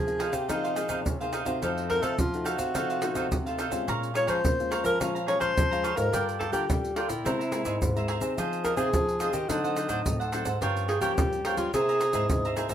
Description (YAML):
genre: samba and choro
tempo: 107 BPM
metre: 4/4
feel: straight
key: F minor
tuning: A4 = 439 Hz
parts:
  - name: breathy alto saxophone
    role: melody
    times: 0.0-12.5 s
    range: Eb4 to Db5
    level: -29 LUFS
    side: equal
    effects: none
  - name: nylon-string guitar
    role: accompaniment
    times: 0.0-12.7 s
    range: F2 to A4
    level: -36 LUFS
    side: left 7 dB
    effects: none
  - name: nylon-string guitar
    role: bass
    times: 0.0-12.7 s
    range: F2 to Bb3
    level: -32 LUFS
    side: equal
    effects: none
  - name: egg shaker, pandeiro and surdo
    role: percussion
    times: 0.1-12.7 s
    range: none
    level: -31 LUFS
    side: right 1 dB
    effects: none
  - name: cavaquinho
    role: accompaniment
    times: 0.2-12.7 s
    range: D4 to Bb5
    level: -32 LUFS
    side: right 3 dB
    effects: none
room: moderate studio ambience, RT60 0.5 s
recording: minimal, uncompressed stereo recording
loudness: -25 LUFS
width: side -10 dB against mid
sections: 0.0-12.7 A section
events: none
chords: 0.0 Fm7; 1.6 F7b9; 3.9 Bbm7; 6.1 Gm9; 7.3 C7alt; 8.4 Fm7; 9.5 D7b9; 10.6 Gm7b5; 11.7 Caug7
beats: 0.49 1.06 | 1.63 2.19 2.75 3.32 | 3.88 4.45 5.01 5.57 | 6.13 6.69 7.25 7.82 | 8.38 8.94 9.49 10.05 | 10.62 11.18 11.73 12.29